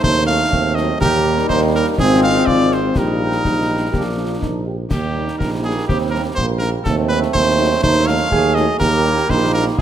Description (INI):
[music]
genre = military-style march for wind band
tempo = 123 BPM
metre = 2/4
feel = straight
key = Eb major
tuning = A4 = 440 Hz
[part]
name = clear cornet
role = melody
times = 0.0-9.8 s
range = G4 to F5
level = -20 LUFS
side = equal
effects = none
[part]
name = clear euphonium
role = second line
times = 0.0-9.8 s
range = Bb3 to Ab4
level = -22 LUFS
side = right 4 dB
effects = none
[part]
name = warm trombone section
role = sustained chords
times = 0.0-9.8 s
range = F3 to Eb4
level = -25 LUFS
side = right 2 dB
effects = none
[part]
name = warm tuba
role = bass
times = 0.0-9.8 s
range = Ab1 to Eb2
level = -20 LUFS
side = right 3 dB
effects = none
[part]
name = concert snare drum, concert bass drum and clash cymbals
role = drums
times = 0.0-9.8 s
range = none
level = -24 LUFS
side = left 2 dB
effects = none
[part]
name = dark French horn section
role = accompaniment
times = 0.3-9.6 s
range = F3 to F4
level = -23 LUFS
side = left 6 dB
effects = none
[sound]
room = moderate recital hall reverb, RT60 1.6 s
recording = none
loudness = -14 LUFS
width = side -10 dB against mid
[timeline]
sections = 0.0-9.8 A section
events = none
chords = 0.0 Ebdim7; 1.0 Eb; 2.0 Fm/Ab; 3.0 Eb/Bb; 3.9 Bb; 4.9 Eb; 6.9 Ebdim7; 8.8 Eb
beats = | 0.03 0.52 | 1.01 1.50 | 1.98 2.47 | 2.96 3.45 | 3.94 4.42 | 4.91 5.40 | 5.88 6.37 | 6.86 7.35 | 7.83 8.32 | 8.81 9.30 | 9.79